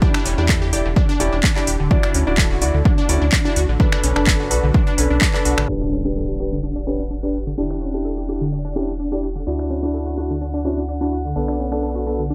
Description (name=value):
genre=progressive house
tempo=127 BPM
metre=4/4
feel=straight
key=D major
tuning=A4 = 437 Hz
part: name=unison pluck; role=arpeggios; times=0.0-12.3 s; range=D3 to A4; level=-27 LUFS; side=equal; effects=phaser, sidechain pumping, dub echo
part: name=warm concert grand piano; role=stabs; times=0.0-12.2 s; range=B3 to D5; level=-26 LUFS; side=equal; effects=sidechain pumping, low-pass filter, dub echo
part: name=electronic kick drum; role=drums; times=0.0-5.3 s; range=none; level=-20 LUFS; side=equal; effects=overdrive
part: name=house drum kit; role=drums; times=0.1-11.8 s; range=finger snaps, handclaps, hi-hat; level=-25 LUFS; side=equal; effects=overdrive, low-pass filter on snare, low-pass filter on hats, low-pass filter on room
part: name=round analog bass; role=bass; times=0.3-12.3 s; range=D1 to E2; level=-25 LUFS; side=equal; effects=sidechain pumping
part: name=impact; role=sound effects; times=5.7-7.6 s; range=none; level=-31 LUFS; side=equal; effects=none
part: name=drifting glass-harmonics texture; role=texture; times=7.0-12.3 s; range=F#5 to F#6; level=-41 LUFS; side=equal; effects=chorus, built-in reverb, sidechain pumping
room=little or no reverb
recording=low-pass filter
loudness=-19 LUFS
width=mono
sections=0.0-5.7 A section; 5.7-12.3 B section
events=impact 5.7-7.6; filter sweep on grand piano 5.7-12.3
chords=0.0 Em7; 1.9 Dadd9; 3.8 Bm7; 5.7 G; 7.6 Em7; 9.5 Dadd9; 11.4 Bm7